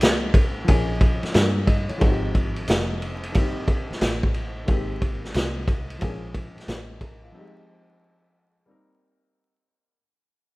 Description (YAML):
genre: hip hop, jazz-hop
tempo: 90 BPM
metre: 4/4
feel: swing 66% on 16ths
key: unclear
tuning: A4 = 440 Hz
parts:
  - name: warm baby grand piano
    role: accompaniment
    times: 0.0-10.0 s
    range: Eb3 to Eb5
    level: -31 LUFS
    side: left 2 dB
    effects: none
  - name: deep dub picked electric bass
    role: bass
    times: 0.0-7.3 s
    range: F1 to G2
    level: -28 LUFS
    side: equal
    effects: none
  - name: vintage drum kit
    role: drums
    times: 0.0-7.2 s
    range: hi-hat, kick drum, ride cymbal, snare drum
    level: -21 LUFS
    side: equal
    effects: none
room: light reverb, studio reverb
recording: rough home demo mix, vinyl crackle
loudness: -20 LUFS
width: side -22 dB against mid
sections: 0.0-10.0 A section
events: fade-out 0.0-10.0; break 7.3-10.0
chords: 0.0 Abmaj9; 0.7 Bbm7; 2.0 Fm9/Ab; 3.3 Cm7/G; 4.7 Abmaj9; 6.0 Bbm7; 7.3 Fm9; 8.7 Cm7/G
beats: 0.01 0.68 1.34 | 2.01 2.68 3.34 4.01 | 4.68 5.34 6.01 6.68 | 7.34 8.01 8.68 9.34